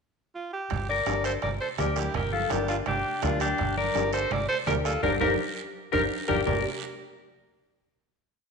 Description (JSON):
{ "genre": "latin, cumbia", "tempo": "167 BPM", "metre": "4/4", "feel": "straight", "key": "G minor", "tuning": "A4 = 438 Hz", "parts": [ { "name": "clear alto saxophone", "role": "melody", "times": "0.4-6.6 s", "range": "F4 to D5", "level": "-30 LUFS", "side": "right 3 dB", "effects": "none" }, { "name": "fingered electric bass", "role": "bass", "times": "0.7-6.6 s", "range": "G1 to D2", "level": "-32 LUFS", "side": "equal", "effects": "transformer saturation" }, { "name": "bombo", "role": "percussion", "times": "0.7-6.6 s", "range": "none", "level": "-34 LUFS", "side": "right 7 dB", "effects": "none" }, { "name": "congas", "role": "percussion", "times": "0.7-6.6 s", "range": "none", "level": "-36 LUFS", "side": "right 10 dB", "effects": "none" }, { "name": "guiro", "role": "percussion", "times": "0.7-6.6 s", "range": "none", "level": "-42 LUFS", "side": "right 13 dB", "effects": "none" }, { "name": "timbales", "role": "percussion", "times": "0.7-6.6 s", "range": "none", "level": "-38 LUFS", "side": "right 11 dB", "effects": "none" }, { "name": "clean electric guitar", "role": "second line", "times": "0.9-6.6 s", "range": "D4 to Bb4", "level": "-30 LUFS", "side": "left 7 dB", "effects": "phaser, slapback echo" }, { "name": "dark upright piano", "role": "accompaniment", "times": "1.1-6.6 s", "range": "D4 to Bb4", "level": "-32 LUFS", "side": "left 8 dB", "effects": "none" } ], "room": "wet echo chamber reverb, RT60 1.4 s", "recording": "1960s-style stereo with parts hard left and right", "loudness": "-24 LUFS", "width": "side -5 dB against mid", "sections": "0.0-0.7 pickup bar; 0.7-6.5 A section; 6.5-7.9 final chord", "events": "drum fill 5.0-6.5; band accent 5.0-6.5", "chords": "0.0 N.C.; 0.7 Gm" }